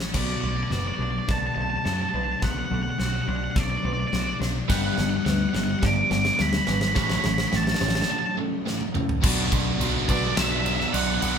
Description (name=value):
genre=post-rock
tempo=106 BPM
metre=4/4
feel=straight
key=B minor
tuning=A4 = 440 Hz
part: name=pedal steel guitar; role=sustained chords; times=0.0-11.4 s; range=G3 to A5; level=-39 LUFS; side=right 2 dB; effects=none
part: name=felt-muted upright piano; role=arpeggios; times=0.0-11.4 s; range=A4 to D5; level=-40 LUFS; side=right 5 dB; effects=none
part: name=twelve-string electric guitar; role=arpeggios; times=0.0-4.7 s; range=B2 to F#4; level=-37 LUFS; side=left 3 dB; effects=none
part: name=picked electric bass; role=bass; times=0.0-11.4 s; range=F#1 to F#2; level=-28 LUFS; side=equal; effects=none
part: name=huge arena drum kit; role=drums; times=0.0-11.3 s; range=crash cymbal, kick drum, snare drum, toms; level=-27 LUFS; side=equal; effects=none
part: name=overdriven semi-hollow guitar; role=riff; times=0.1-11.4 s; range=B2 to F#4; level=-30 LUFS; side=left 4 dB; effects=phaser
part: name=octave-fuzz lead guitar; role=melody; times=0.2-11.4 s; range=D5 to D6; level=-28 LUFS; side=right 1 dB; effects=distortion
part: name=cranked stack guitar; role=riff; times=4.7-11.4 s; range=B2 to G4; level=-29 LUFS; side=right 8 dB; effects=overdrive
room=moderate studio reverb, RT60 0.5 s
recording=band playing live in one room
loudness=-22 LUFS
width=side -7 dB against mid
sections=0.1-9.2 A section; 9.2-11.4 B section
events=build-up 0.1-9.2; drum fill 0.1-8.1, 8.7-9.2; break 8.1-9.2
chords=0.1 Bm7; 4.7 Gmaj7; 7.0 F#m/A; 9.2 Bm7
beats=| 0.15 0.72 1.29 1.85 | 2.42 2.99 3.56 4.13 | 4.70 5.26 5.83 6.40 | 6.96 7.53 8.10 8.66 | 9.23 9.80 10.36 10.93